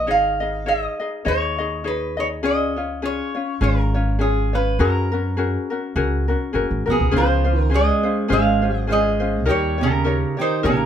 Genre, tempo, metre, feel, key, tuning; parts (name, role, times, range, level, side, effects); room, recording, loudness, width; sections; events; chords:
Hawaiian; 102 BPM; 4/4; swing 56% on 8ths; F# major, Db major from 7.1 s; A4 = 441 Hz
lap resonator guitar; melody; 0.0-10.9 s; B3 to E#5; -22 LUFS; right 1 dB
ukulele; accompaniment; 0.0-10.9 s; C#4 to D#5; -24 LUFS; left 4 dB
upright bass; bass; 0.0-10.9 s; F#1 to F#2; -22 LUFS; right 1 dB
fingerpicked acoustic archtop guitar; second line; 6.9-10.9 s; B2 to Ab3; -24 LUFS; right 5 dB
moderate small room reverb, RT60 0.6 s; -18 LUFS; side -9 dB against mid
0.0-7.1 A section; 7.1-10.9 B section
0.1 G#sus4; 2.4 C#; 4.8 F#add9; 7.1 Dbmaj7; 9.5 Eb7